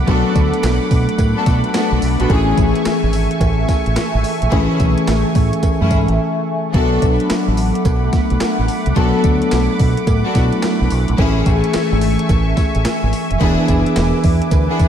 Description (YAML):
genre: R&B, new jack swing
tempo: 108 BPM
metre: 4/4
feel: swing 64% on 16ths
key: B dorian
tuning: A4 = 440 Hz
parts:
  - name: tine electric piano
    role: accompaniment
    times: 0.0-14.9 s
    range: E3 to A4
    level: -19 LUFS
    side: left 2 dB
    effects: phaser, slapback echo
  - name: lush unison pad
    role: sustained chords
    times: 0.0-14.9 s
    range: A3 to D6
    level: -22 LUFS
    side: right 1 dB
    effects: chorus, phaser
  - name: deep dub fingered electric bass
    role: bass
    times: 0.0-14.9 s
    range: E1 to B2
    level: -18 LUFS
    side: right 1 dB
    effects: none
  - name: bright studio string section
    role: stabs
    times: 0.1-14.9 s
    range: A3 to A4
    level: -24 LUFS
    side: left 1 dB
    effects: ping-pong delay, slapback echo
  - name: crisp 8-bit digital drum machine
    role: drums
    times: 0.1-14.9 s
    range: handclaps, hi-hat, kick drum, snare drum, tambourine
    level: -19 LUFS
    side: equal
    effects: overdrive
  - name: cowbell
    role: percussion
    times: 0.1-14.7 s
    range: none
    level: -32 LUFS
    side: right 7 dB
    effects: none
room: moderate lush hall reverb, RT60 2.5 s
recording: big arena sound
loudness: -13 LUFS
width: side -9 dB against mid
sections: 0.0-14.9 A section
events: break 6.2-6.7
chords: 0.0 Bm7; 2.3 Amaj7; 6.7 Bm7; 11.2 Amaj7; 13.4 E7